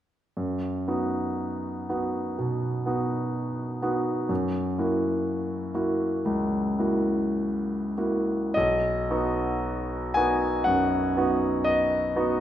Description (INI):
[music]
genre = classical, romantic nocturne for solo piano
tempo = 47-64 BPM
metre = 4/4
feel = rubato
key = B major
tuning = A4 = 440 Hz
[part]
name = clear concert grand piano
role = solo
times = 0.4-12.4 s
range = B1 to G#5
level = -24 LUFS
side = equal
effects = none
[sound]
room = wet recital hall reverb, RT60 1.7 s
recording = minimal, uncompressed stereo recording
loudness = -24 LUFS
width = side -11 dB against mid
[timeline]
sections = 0.4-8.5 A section; 8.5-12.4 B section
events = none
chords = 0.4 B/F#; 4.3 F#7; 8.5 B